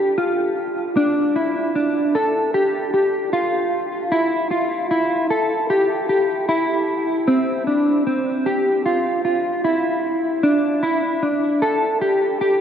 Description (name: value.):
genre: dream pop.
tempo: 76 BPM.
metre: 4/4.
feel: straight.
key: unclear.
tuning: A4 = 440 Hz.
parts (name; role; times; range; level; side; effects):
mellow electric guitar; solo; 0.0-12.6 s; C4 to A4; -17 LUFS; equal; analog chorus, diffuse ambient delay.
room: wet cathedral reverb, RT60 6.5 s.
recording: dreamy mix soaked in reverb.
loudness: -17 LUFS.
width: side -8 dB against mid.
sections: 0.0-10.4 A section; 10.4-12.6 B section.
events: none.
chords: none.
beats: 0.17 | 0.96 1.75 2.54 3.33 | 4.12 4.91 5.70 6.49 | 7.28 8.07 8.86 9.65 | 10.44 11.23 12.02.